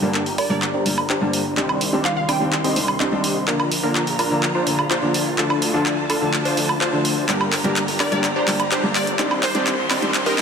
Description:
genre	EDM, festival progressive house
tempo	126 BPM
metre	4/4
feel	straight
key	G minor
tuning	A4 = 440 Hz
part	warm grand piano	accompaniment	0.0-10.4 s	G2 to D4	-24 LUFS	left 1 dB	digital delay
part	dark symphonic string section	sustained chords	0.0-10.4 s	Eb3 to C6	-29 LUFS	right 1 dB	low-pass filter
part	supersaw stab	riff	0.0-10.4 s	C4 to Eb5	-24 LUFS	equal	cassette tape, low-pass filter, digital delay
part	wide detuned saw bass	bass	0.0-10.4 s	G1 to D2	-29 LUFS	equal	chorus, tube saturation, high-pass filter
part	big-room dance drum kit	drums	0.1-10.4 s	handclaps, hi-hat, woodblock	-22 LUFS	right 1 dB	overdrive, high-pass filter on perc, small room ambience, high-pass filter on snare, high-pass filter on hats
part	glassy wavetable pluck	melody	0.4-2.6, 8.0-10.4 s	Bb4 to G5	-26 LUFS	right 1 dB	chorus, digital delay
part	riser	sound effects	8.7-10.4 s	none	-34 LUFS	left 2 dB	none
room	moderate lush hall reverb, RT60 2.2 s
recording	dense, heavily limited modern master, high-pass filter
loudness	-18 LUFS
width	side -6 dB against mid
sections	0.0-10.4 A section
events	build-up 0.0-10.4; drum fill 0.0-10.4; filter sweep on supersaw synth 0.0-10.4; filter sweep on string section 0.0-10.4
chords	0.0 Gm; 1.6 Cmadd9; 3.5 Bb; 5.4 Dm; 7.3 Gm; 9.2 Cmadd9

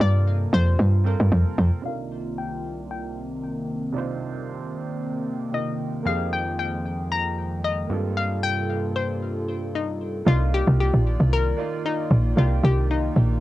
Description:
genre	amapiano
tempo	114 BPM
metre	4/4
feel	swing 55% on 16ths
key	C minor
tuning	A4 = 435 Hz
part	hollow square pluck	melody	0.0-13.4 s	Eb4 to Bb5	-28 LUFS	left 6 dB	chorus, low-pass filter, cassette tape, tape echo
part	warm baby grand piano	accompaniment	0.0-13.4 s	C3 to D5	-34 LUFS	right 8 dB	low-pass filter, cassette tape
part	hollow soft pad	sustained chords	0.0-13.4 s	C2 to G5	-31 LUFS	equal	chorus, low-pass filter, cassette tape
part	woody log drum bass	bass	0.0-1.7, 10.3-13.4 s	Bb1 to G2	-18 LUFS	equal	none
part	fat analog bass	bass	6.1-10.2 s	F2 to G2	-28 LUFS	equal	none
room	little or no reverb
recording	home recording on cassette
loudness	-21 LUFS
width	side -16 dB against mid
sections	0.0-1.8 A section; 1.8-10.3 B section; 10.3-13.4 A section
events	drop 0.0-1.8, 10.3-13.4; filter sweep 1.8-10.3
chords	0.0 Gm11; 1.8 Cm11; 6.1 Fm11; 7.9 Gm11; 10.3 Cm11

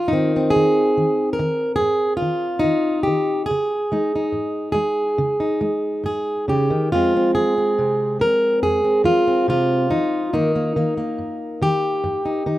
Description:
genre	folk, solo fingerstyle acoustic guitar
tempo	71 BPM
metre	4/4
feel	rubato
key	F minor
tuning	A4 = 441 Hz
part	fingerpicked plugged-in steel-string acoustic guitar	solo	0.0-12.6 s	F2 to Bb4	-17 LUFS	equal	none
room	light reverb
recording	recorded outdoors, with no room sound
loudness	-17 LUFS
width	side -15 dB against mid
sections	0.0-12.6 A section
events	none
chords	0.1 Ab; 3.5 Dbsus2; 6.9 Fm; 10.3 Eb/G

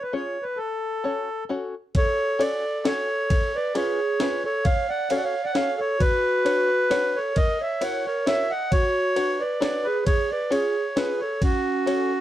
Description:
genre	musette waltz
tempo	133 BPM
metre	3/4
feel	swing 53% on 8ths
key	F# harmonic minor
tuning	A4 = 441 Hz
part	accordion	melody	0.0-12.2 s	F#4 to F#5	-24 LUFS	equal	slapback echo
part	open-back banjo	accompaniment	0.1-12.1 s	C#4 to C#5	-27 LUFS	left 3 dB	none
part	breakbeat sampler-style drum kit	drums	1.9-12.0 s	kick drum, ride cymbal, snare drum	-26 LUFS	equal	none
part	dark clarinet	second line	2.0-12.2 s	C#4 to D#5	-28 LUFS	right 3 dB	none
room	light reverb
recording	dark, warm production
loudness	-21 LUFS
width	side -12 dB against mid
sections	0.0-1.9 A section; 1.9-12.2 A section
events	none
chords	0.0 C#; 0.6 F#m; 3.3 C#7; 4.6 F#m; 6.0 Bmadd9; 7.4 F#7; 8.7 Bmadd9; 10.1 C#; 11.4 F#m

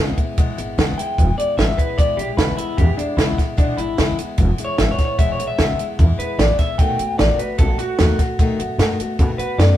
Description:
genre	rockabilly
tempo	150 BPM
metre	4/4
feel	straight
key	E major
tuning	A4 = 440 Hz
part	electric guitar through a small old amp	melody	0.0-9.8 s	D4 to G5	-23 LUFS	left 2 dB	none
part	picked steel-string acoustic guitar	accompaniment	0.0-9.8 s	E2 to F#4	-26 LUFS	left 3 dB	none
part	upright bass	bass	0.0-9.7 s	E1 to B2	-20 LUFS	equal	none
part	compact cocktail drum kit	drums	0.2-9.7 s	hi-hat, kick drum, snare drum	-19 LUFS	right 1 dB	none
room	light reverb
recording	band playing live in one room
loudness	-16 LUFS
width	side -12 dB against mid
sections	0.0-9.8 A section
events	clean electric guitar solo 0.0-9.8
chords	0.0 E; 6.8 B7

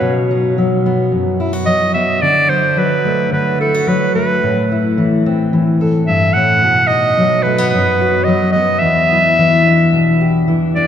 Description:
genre	acoustic folk duo or small band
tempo	109 BPM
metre	4/4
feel	straight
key	unclear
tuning	A4 = 440 Hz
part	bright clarinet	melody	0.0-10.9 s	A4 to F#5	-15 LUFS	right 1 dB	none
part	fingerpicked steel-string acoustic guitar	accompaniment	0.0-10.9 s	E2 to A4	-14 LUFS	left 1 dB	none
room	wet cathedral reverb, RT60 5.0 s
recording	recorded in a church or concert hall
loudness	-11 LUFS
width	side -9 dB against mid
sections	0.0-10.9 A section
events	none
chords	0.0 B; 2.2 D; 4.4 Am; 6.6 B; 8.8 Em7

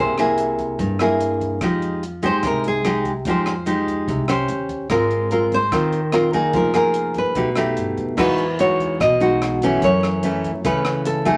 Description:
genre	bossa nova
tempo	146 BPM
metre	4/4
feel	straight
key	F minor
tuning	A4 = 439 Hz
part	nylon-string guitar	melody	0.0-11.3 s	Ab4 to D#5	-24 LUFS	equal	none
part	nylon-string guitar	accompaniment	0.0-11.4 s	F#2 to C5	-21 LUFS	equal	none
part	upright bass	bass	0.0-11.4 s	F1 to G2	-33 LUFS	equal	none
part	compact cocktail drum kit	drums	0.2-11.4 s	crash cymbal, hi-hat, kick drum, rim click	-33 LUFS	equal	none
room	moderate studio reverb, RT60 0.5 s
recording	vinyl crackle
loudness	-20 LUFS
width	mono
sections	0.0-8.2 A section; 8.2-11.4 B section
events	none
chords	0.0 C7b13; 1.6 Fm9; 4.5 Eb6; 4.9 Ab69; 6.5 Fm7; 7.4 Baug7; 8.2 Emaj9; 9.8 F#m7

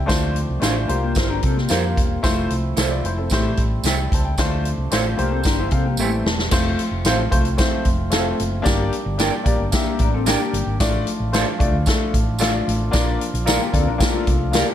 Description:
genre	uptempo 1960s-style soul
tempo	112 BPM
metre	4/4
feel	straight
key	D minor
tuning	A4 = 440 Hz
part	warm upright piano	accompaniment	0.0-14.7 s	A3 to A5	-24 LUFS	left 3 dB	none
part	percussive tonewheel organ	sustained chords	0.0-14.7 s	E3 to G4	-31 LUFS	right 1 dB	overdrive, lush chorus
part	hollow-body short-scale fingered electric bass	bass	0.0-14.6 s	E1 to C3	-23 LUFS	equal	none
part	swinging big-band drum kit	drums	0.1-14.7 s	crash cymbal, hi-hat, kick drum, snare drum	-21 LUFS	equal	none
part	tambourine	percussion	0.1-14.7 s	none	-32 LUFS	right 8 dB	none
part	electric guitar through a small old amp	stabs	0.6-14.6 s	C4 to G5	-28 LUFS	right 8 dB	spring reverb
part	mellow electric guitar	riff	1.0-6.1, 9.7-14.7 s	A3 to C5	-27 LUFS	left 7 dB	spring reverb
room	light reverb, studio reverb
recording	none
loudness	-17 LUFS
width	side -10 dB against mid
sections	0.0-6.5 A section; 6.5-14.7 B section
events	upright piano fill 5.5-6.5; drum fill 6.0-6.5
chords	0.1 Dm7; 0.9 C7sus4; 2.2 Fmaj7; 3.3 Am7; 4.4 Dm7; 5.2 C7sus4; 6.0 Am7; 6.5 F; 8.7 Gm; 10.8 Dm/A; 12.9 Bb

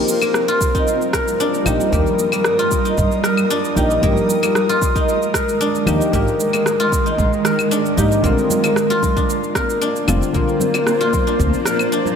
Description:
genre	organic downtempo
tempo	114 BPM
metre	4/4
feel	straight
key	Bb mixolydian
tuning	A4 = 440 Hz
part	deep mellow chord stab	accompaniment	0.0-12.2 s	D3 to G4	-25 LUFS	left 2 dB	chorus, sidechain pumping, digital delay, shimmer reverb
part	granular cloud pad	sustained chords	0.0-12.2 s	Eb3 to Eb6	-21 LUFS	right 3 dB	built-in reverb, sidechain pumping, shimmer reverb
part	guzheng	arpeggios	0.0-12.2 s	Bb3 to Bb4	-18 LUFS	left 2 dB	digital delay, shimmer reverb
part	electronic shaker, claves and rim click	drums	0.1-12.2 s	none	-24 LUFS	equal	none
part	electronic kick drum	drums	0.6-11.5 s	none	-21 LUFS	right 1 dB	none
part	upright bass	bass	1.7-11.5 s	F1 to Ab2	-20 LUFS	right 1 dB	sidechain pumping
part	congas and bongos	percussion	8.5-12.2 s	none	-29 LUFS	equal	none
room	moderate concert hall reverb, RT60 1.8 s, small room ambience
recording	none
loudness	-15 LUFS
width	side -7 dB against mid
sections	0.0-12.2 A section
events	none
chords	0.0 Ebadd9; 4.0 Absus2; 8.2 Bbadd9

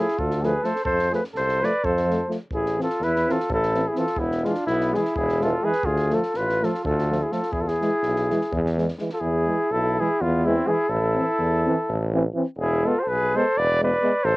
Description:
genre	balkan folk, Balkan brass band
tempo	251 BPM (eighths)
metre	7/8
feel	straight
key	E phrygian dominant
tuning	A4 = 442 Hz
part	dark cornet	melody	0.0-14.4 s	E4 to D5	-24 LUFS	left 1 dB	cassette tape
part	mellow flugelhorn	second line	0.0-14.4 s	B3 to B4	-28 LUFS	right 2 dB	cassette tape
part	warm euphonium	accompaniment	0.0-14.1 s	G#3 to C4	-28 LUFS	left 2 dB	cassette tape
part	warm euphonium	accompaniment	0.0-14.1 s	E3 to G#3	-28 LUFS	right 3 dB	cassette tape
part	compact cocktail drum kit	percussion	0.1-9.2 s	kick drum, snare drum	-37 LUFS	equal	cassette tape
part	warm tuba	bass	0.2-14.4 s	E1 to F2	-26 LUFS	equal	none
room	moderate booth ambience, RT60 0.2 s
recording	home recording on cassette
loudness	-20 LUFS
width	side -20 dB against mid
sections	0.0-9.2 A section; 9.2-14.4 B section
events	none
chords	0.0 Dm; 0.9 F; 2.5 Am; 4.2 E; 5.8 Dm; 7.5 E; 10.9 Am; 12.6 E

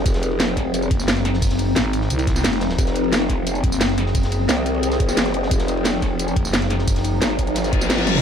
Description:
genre	dark technical drum and bass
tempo	176 BPM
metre	4/4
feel	straight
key	F phrygian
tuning	A4 = 440 Hz
part	swarming drone	sustained chords	0.0-8.2 s	F3 to Ab4	-24 LUFS	left 1 dB	built-in reverb, sidechain pumping
part	growl bass	bass	0.0-8.2 s	F1 to C2	-23 LUFS	equal	chorus, overdrive, sidechain pumping
part	crunchy breakbeat drum kit	drums	0.1-8.2 s	hi-hat, ride cymbal, snare drum	-33 LUFS	equal	high-pass filter on cymbals, high-pass filter on hats, high-pass filter on snare, high-pass filter on room
part	drum and bass drum kit	drums	0.1-8.2 s	hi-hat, snare drum, tambourine, toms	-22 LUFS	equal	none
part	electronic kick drum	drums	0.1-7.8 s	none	-21 LUFS	equal	none
part	growling FM bass	bass	0.9-7.2 s	F1 to C2	-22 LUFS	equal	none
part	reverse cymbal	sound effects	7.7-8.2 s	none	-23 LUFS	left 5 dB	none
room	little or no reverb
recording	none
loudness	-17 LUFS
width	side -8 dB against mid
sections	0.0-8.2 A section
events	reverse cymbal 7.7-8.2; drum fill 7.9-8.2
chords	0.0 Fm

